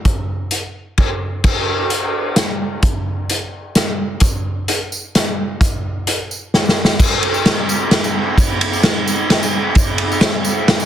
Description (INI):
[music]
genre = rock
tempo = 130 BPM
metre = 3/4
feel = straight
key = none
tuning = none
[part]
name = vintage drum kit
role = drums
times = 0.1-10.8 s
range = crash cymbal, hi-hat, kick drum, ride cymbal, snare drum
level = -14 LUFS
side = equal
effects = none
[part]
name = tambourine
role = percussion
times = 4.2-10.9 s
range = none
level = -27 LUFS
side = right 3 dB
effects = none
[sound]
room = small room ambience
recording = dense, heavily limited modern master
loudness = -15 LUFS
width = side -10 dB against mid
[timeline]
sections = 0.0-1.4 A section; 1.4-7.0 B section; 7.0-10.9 C section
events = drum fill 6.5-7.0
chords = none